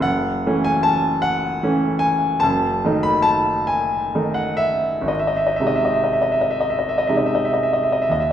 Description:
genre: classical, romantic nocturne for solo piano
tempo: 39-52 BPM (dotted quarters)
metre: 12/8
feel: rubato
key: unclear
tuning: A4 = 436 Hz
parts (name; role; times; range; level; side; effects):
- clear concert grand piano; solo; 0.0-8.3 s; F#1 to B5; -17 LUFS; equal; none
room: wet recital hall reverb, RT60 1.5 s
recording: heard from further back in the room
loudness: -17 LUFS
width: side -10 dB against mid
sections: 0.0-8.3 A section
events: none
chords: 0.1 F#m7; 2.4 D#dim/F#; 5.1 G#

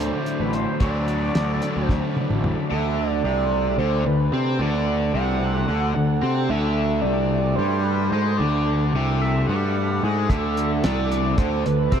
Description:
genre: psychedelic rock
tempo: 222 BPM (eighths)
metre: 7/8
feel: straight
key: D mixolydian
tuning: A4 = 441 Hz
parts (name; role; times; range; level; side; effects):
- overdriven synth lead; melody; 0.0-12.0 s; B4 to F#5; -27 LUFS; right 2 dB; distortion, phaser, ping-pong delay
- combo organ; sustained chords; 0.0-12.0 s; A3 to B5; -32 LUFS; right 5 dB; wide subtle chorus
- cranked stack guitar; riff; 0.0-12.0 s; C3 to F#4; -25 LUFS; left 1 dB; overdrive, phaser
- fuzz picked electric bass; bass; 0.0-12.0 s; A1 to C3; -23 LUFS; equal; overdrive
- cloth-damped thuddy drum kit; drums; 0.0-2.6, 10.3-12.0 s; hi-hat, kick drum, snare drum, toms; -26 LUFS; equal; none
room: moderate huge ambient reverb, RT60 6.8 s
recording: dreamy mix soaked in reverb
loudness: -19 LUFS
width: side -8 dB against mid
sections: 0.0-2.7 A section; 2.7-12.0 B section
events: drum fill 1.9-2.7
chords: 0.0 D

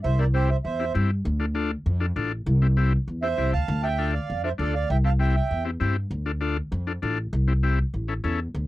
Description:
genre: latin, cumbia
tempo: 198 BPM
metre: 4/4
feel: straight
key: D minor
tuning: A4 = 441 Hz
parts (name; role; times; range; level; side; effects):
- accordion; melody; 0.0-0.9, 3.2-5.6 s; G4 to A5; -28 LUFS; right 6 dB; none
- upright bass; bass; 0.0-8.7 s; A1 to G2; -23 LUFS; equal; none
- combo organ; accompaniment; 0.2-8.4 s; C4 to A4; -28 LUFS; left 5 dB; none
room: little or no reverb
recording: dry, close 1970s-style studio recording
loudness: -22 LUFS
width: side -16 dB against mid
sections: 0.0-8.5 A section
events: none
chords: 0.0 C; 1.3 Dm; 2.5 C; 3.7 Dm; 4.9 C; 6.1 Dm; 7.3 C; 7.9 A

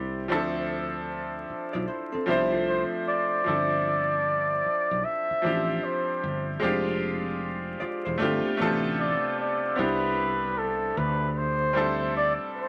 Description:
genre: R&B, neo-soul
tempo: 76 BPM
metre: 4/4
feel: swing 64% on 16ths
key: C major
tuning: A4 = 442 Hz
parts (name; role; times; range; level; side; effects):
- bright concert grand piano; accompaniment; 0.0-12.7 s; C3 to E5; -31 LUFS; equal; none
- sustaining fretless electric bass; bass; 0.0-12.4 s; E1 to D2; -35 LUFS; equal; none
- vintage hollow-body jazz guitar; second line; 1.7-9.6 s; A3 to D5; -35 LUFS; equal; none
- breathy flugelhorn; melody; 2.7-12.7 s; A4 to E5; -28 LUFS; equal; none
room: moderate studio reverb, RT60 0.6 s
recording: vinyl crackle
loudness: -27 LUFS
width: mono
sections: 0.0-9.8 A section; 9.8-12.7 B section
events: none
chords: 0.3 Dm9; 3.5 G13sus4; 6.6 Fm6; 8.2 G7sus4; 9.8 Cmaj9

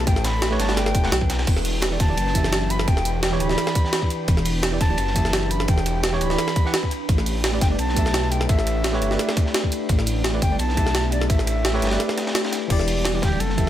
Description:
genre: liquid drum and bass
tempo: 171 BPM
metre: 4/4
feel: straight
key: E minor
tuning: A4 = 440 Hz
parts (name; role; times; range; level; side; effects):
- breathy bright concert flute; melody; 0.0-13.7 s; G4 to B5; -29 LUFS; left 1 dB; ping-pong delay
- mellow tine electric piano; accompaniment; 0.0-13.7 s; E3 to F#5; -27 LUFS; moving between left 5 dB and right 5 dB; auto-pan, digital delay
- glassy FM pad; sustained chords; 0.0-13.7 s; G3 to G5; -31 LUFS; equal; ensemble chorus, built-in reverb, sidechain pumping
- swelling detuned saw bass; bass; 0.0-13.7 s; D1 to B1; -24 LUFS; equal; none
- crunchy breakbeat drum kit; drums; 0.1-13.7 s; hi-hat, ride cymbal, snare drum; -31 LUFS; equal; high-pass filter on cymbals, small room ambience, high-pass filter on hats, high-pass filter on snare, high-pass filter on room
- electronic kick drum; drums; 0.1-13.7 s; none; -21 LUFS; equal; small room ambience
- jungle sampler-style drum kit; drums; 0.1-13.7 s; crash cymbal, hi-hat, snare drum; -26 LUFS; right 1 dB; small room ambience
room: little or no reverb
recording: none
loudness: -19 LUFS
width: side -12 dB against mid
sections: 0.0-12.7 A section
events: drop 0.0-12.7; break 12.0-12.7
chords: 0.0 A9sus4; 1.5 Em7; 7.1 A9sus4; 12.7 Em7

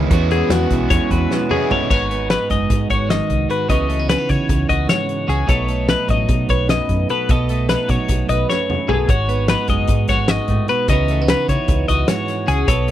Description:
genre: math rock and midwest emo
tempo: 300 BPM (eighths)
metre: 9/8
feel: straight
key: unclear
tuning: A4 = 440 Hz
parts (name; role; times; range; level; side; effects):
- twelve-string electric guitar; accompaniment; 0.0-12.9 s; E2 to B4; -22 LUFS; right 5 dB; none
- crunchy overdriven guitar; riff; 0.0-1.9 s; E3 to E4; -22 LUFS; right 2 dB; none
- hollow-body short-scale fingered electric bass; bass; 0.0-12.9 s; F#1 to C#3; -20 LUFS; equal; none
- loose indie drum kit; drums; 0.1-12.9 s; crash cymbal, hi-hat, kick drum, snare drum, toms; -20 LUFS; equal; none
- twelve-string electric guitar; arpeggios; 0.3-12.9 s; F#4 to D#5; -21 LUFS; left 6 dB; none
room: little or no reverb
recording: none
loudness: -15 LUFS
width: side -12 dB against mid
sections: 0.0-1.9 A section; 1.9-12.9 B section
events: drum fill 1.3-1.9, 8.5-9.1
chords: 0.1 E69; 1.9 G#m7; 3.7 C#m11; 5.5 B7; 9.1 G#m7; 10.9 C#m11

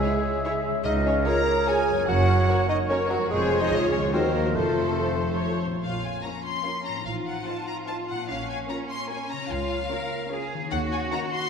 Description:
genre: cinematic, playful, whimsical film cue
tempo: 147 BPM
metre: 3/4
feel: straight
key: Bb minor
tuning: A4 = 440 Hz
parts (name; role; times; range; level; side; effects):
- clear studio violin section; melody; 0.0-11.5 s; C5 to C6; -34 LUFS; left 4 dB; none
- mellow flute section; second line; 0.0-5.6 s; Bb4 to E5; -30 LUFS; left 3 dB; none
- rich studio violin section; second line; 0.0-11.4 s; F4 to Bb5; -35 LUFS; left 2 dB; none
- warm clarinet; second line; 0.0-5.6 s; F4 to Bb4; -33 LUFS; left 1 dB; none
- warm oboe; second line; 0.0-5.6 s; Bb4 to F5; -34 LUFS; right 1 dB; none
- rich studio viola section; accompaniment; 0.0-11.4 s; Db4 to Db5; -34 LUFS; equal; none
- warm bassoon; accompaniment; 0.0-5.6 s; Gb3 to Bb4; -27 LUFS; right 2 dB; none
- warm French horn section; sustained chords; 0.0-5.6 s; F4 to E5; -33 LUFS; equal; none
- concert harp; arpeggios; 0.0-11.5 s; F2 to Bb4; -33 LUFS; left 6 dB; none
- rich studio cello section; bass; 0.9-11.5 s; Db2 to Bb4; -31 LUFS; right 2 dB; none
- rich studio double bass section; bass; 0.9-11.0 s; F1 to Eb2; -30 LUFS; right 3 dB; none
room: wet scoring stage reverb, RT60 2.0 s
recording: dark, warm production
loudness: -23 LUFS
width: side -6 dB against mid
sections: 0.0-5.8 A section; 5.8-11.5 B section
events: none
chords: 0.0 C#m; 0.9 Db; 2.1 Gb; 3.3 Db/F; 4.1 Cm7b5/Eb; 4.6 F; 5.8 Bbm; 7.1 F7/A; 8.3 Bbm; 9.5 Bbm/Db; 10.7 Ebm7

